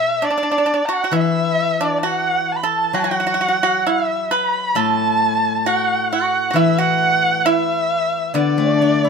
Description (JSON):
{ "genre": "chinese traditional, Chinese chamber ensemble", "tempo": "66 BPM", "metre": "2/4", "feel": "rubato", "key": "unclear", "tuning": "A4 = 441 Hz", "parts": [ { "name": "dark erhu", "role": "melody", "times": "0.0-9.1 s", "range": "D5 to B5", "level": "-18 LUFS", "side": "right 1 dB", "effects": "none" }, { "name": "pipa", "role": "second line", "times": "0.0-9.1 s", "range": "D4 to B4", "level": "-21 LUFS", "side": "right 5 dB", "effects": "none" }, { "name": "steel-string zither", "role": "accompaniment", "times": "0.0-9.1 s", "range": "A2 to E4", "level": "-22 LUFS", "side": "left 6 dB", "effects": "none" } ], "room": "moderate spring reverb, RT60 1.5 s", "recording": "minimal, uncompressed stereo recording", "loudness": "-16 LUFS", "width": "side -5 dB against mid", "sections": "0.0-9.1 A section", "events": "none", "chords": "none", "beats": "0.22 | 1.12 2.03 | 2.94 3.86 | 4.75 5.65 | 6.55 7.45 | 8.36" }